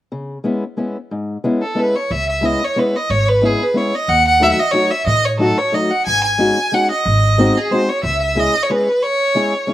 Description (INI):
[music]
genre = musette waltz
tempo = 182 BPM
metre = 3/4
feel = swing 54% on 8ths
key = C# minor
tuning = A4 = 440 Hz
[part]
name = fingerpicked steel-string acoustic guitar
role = accompaniment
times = 0.1-9.7 s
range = G#2 to G#4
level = -18 LUFS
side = left 2 dB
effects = none
[part]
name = clear violin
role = melody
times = 1.6-9.7 s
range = G#4 to G#5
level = -16 LUFS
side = right 1 dB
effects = slapback echo
[part]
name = upright bass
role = bass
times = 2.1-8.5 s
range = G#1 to A2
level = -19 LUFS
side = equal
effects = none
[sound]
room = little or no reverb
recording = recorded outdoors, with no room sound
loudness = -14 LUFS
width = side -13 dB against mid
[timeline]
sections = 0.1-2.1 A section; 2.1-9.7 B section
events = none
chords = 0.1 C#m7; 4.1 D#dim; 6.1 G#7sus4; 7.1 G#7; 8.0 C#m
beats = | 0.12 0.46 0.79 | 1.12 1.45 1.77 | 2.10 2.44 2.77 | 3.10 3.42 3.75 | 4.08 4.41 4.73 | 5.06 5.39 5.73 | 6.06 6.39 6.73 | 7.05 7.38 7.71 | 8.03 8.36 8.69 | 9.02 9.35 9.68